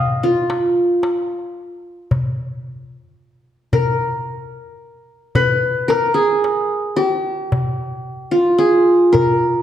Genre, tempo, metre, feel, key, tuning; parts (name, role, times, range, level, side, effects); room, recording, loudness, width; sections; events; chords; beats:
Turkish makam ensemble; 111 BPM (eighths); 10/8; straight; Bb makam hicaz; A4 = 440 Hz
qanun; melody; 0.0-9.6 s; F4 to F5; -16 LUFS; equal
darbuka; percussion; 0.5-9.4 s; -21 LUFS; left 1 dB
wet recital hall reverb, RT60 1.6 s; dark, warm production; -15 LUFS; side -11 dB against mid
0.0-2.1 A section; 2.1-9.6 B section
0.48 1.03 1.57 | 2.11 2.65 3.19 3.73 4.28 4.82 5.36 5.90 6.44 6.98 | 7.53 8.07 8.61 9.15